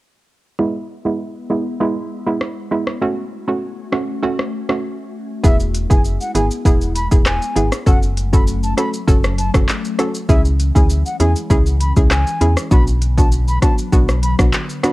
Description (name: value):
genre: dancehall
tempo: 99 BPM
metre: 4/4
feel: straight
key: unclear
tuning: A4 = 436 Hz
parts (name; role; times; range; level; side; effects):
- hollow square pluck; accompaniment; 0.6-14.9 s; G#3 to A4; -20 LUFS; right 2 dB; chorus, low-pass filter, cassette tape
- glassy FM pad; sustained chords; 1.3-14.9 s; D3 to F#4; -29 LUFS; left 3 dB; ensemble chorus, built-in reverb, sidechain pumping, low-pass filter, cassette tape
- afro-pop drum kit; drums; 2.4-14.9 s; handclaps, hi-hat, kick drum, rim click, shaker; -15 LUFS; equal; cassette tape
- reedy baroque flute; melody; 5.4-14.4 s; E5 to B5; -25 LUFS; equal; cassette tape, analog delay
- organ-like FM bass; bass; 5.4-14.5 s; E1 to E2; -17 LUFS; equal; none
room: digital ambience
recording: home recording on cassette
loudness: -14 LUFS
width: side -19 dB against mid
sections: 0.6-5.4 A section; 5.4-14.9 B section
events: filter sweep 0.6-5.4; break 4.8-5.4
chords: 0.6 E; 3.0 F#m; 5.4 E; 7.9 F#m; 10.3 C#m; 12.7 Bm